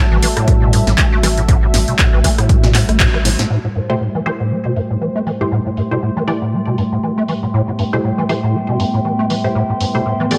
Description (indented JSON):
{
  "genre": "acid house",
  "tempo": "119 BPM",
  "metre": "4/4",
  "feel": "swing 56% on 16ths",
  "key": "A dorian",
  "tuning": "A4 = 439 Hz",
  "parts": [
    { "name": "warm analog pad", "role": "sustained chords", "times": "0.0-10.4 s", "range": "A2 to E5", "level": "-26 LUFS", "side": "equal", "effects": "chorus, sidechain pumping" },
    { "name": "acid bass, square", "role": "riff", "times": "0.0-10.4 s", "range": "G2 to A3", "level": "-21 LUFS", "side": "equal", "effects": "overdrive, ensemble chorus, sidechain pumping, digital delay" },
    { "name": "warbly tape-like pad", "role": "texture", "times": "0.0-10.4 s", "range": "G3 to C6", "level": "-26 LUFS", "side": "equal", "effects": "chorus, built-in reverb, sidechain pumping" },
    { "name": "round analog bass", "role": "bass", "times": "0.1-3.4 s", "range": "A1 to A2", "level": "-20 LUFS", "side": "equal", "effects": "sidechain pumping" },
    { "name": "punchy analog drum machine", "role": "drums", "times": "0.2-10.4 s", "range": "crash cymbal, handclaps, hi-hat, rim click, snare drum", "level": "-22 LUFS", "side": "equal", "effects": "low-pass filter on hats, low-pass filter on snare, low-pass filter on cymbals, low-pass filter on room" },
    { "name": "electronic kick drum", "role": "drums", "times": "0.5-3.1 s", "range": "none", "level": "-16 LUFS", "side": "equal", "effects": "none" },
    { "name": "filtered dub chord stab", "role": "stabs", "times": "3.9-10.4 s", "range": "A3 to D5", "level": "-25 LUFS", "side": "equal", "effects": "phaser, digital delay" }
  ],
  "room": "light reverb, digital ambience",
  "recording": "none",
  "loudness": "-16 LUFS",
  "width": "mono",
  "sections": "0.0-3.5 A section; 3.5-10.4 B section",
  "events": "band accent 3.0; filter sweep on drum 3.5-10.4",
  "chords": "0.0 Am7"
}